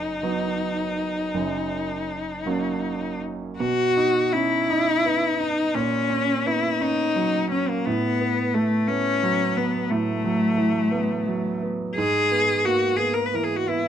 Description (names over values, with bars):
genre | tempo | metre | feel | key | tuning
classical, romantic duo for cello and grand piano | 51-60 BPM (dotted quarters) | 12/8 | rubato | B major | A4 = 440 Hz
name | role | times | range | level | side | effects
bright cello | melody | 0.0-13.9 s | A3 to B4 | -23 LUFS | left 2 dB | none
bright concert grand piano | accompaniment | 0.0-13.9 s | F#1 to D#4 | -26 LUFS | right 4 dB | none
room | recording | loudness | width
light reverb | close, detailed microphones | -21 LUFS | side -9 dB against mid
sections
0.0-3.6 A section; 3.6-13.9 B section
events
none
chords
0.0 B/F#; 1.3 F#; 3.6 B; 5.8 F#/A#; 7.9 B5/A; 12.0 E/G#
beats
0.23 1.34 2.46 | 3.60 4.69 5.75 6.81 | 7.86 8.89 9.90 10.92 | 11.97 13.00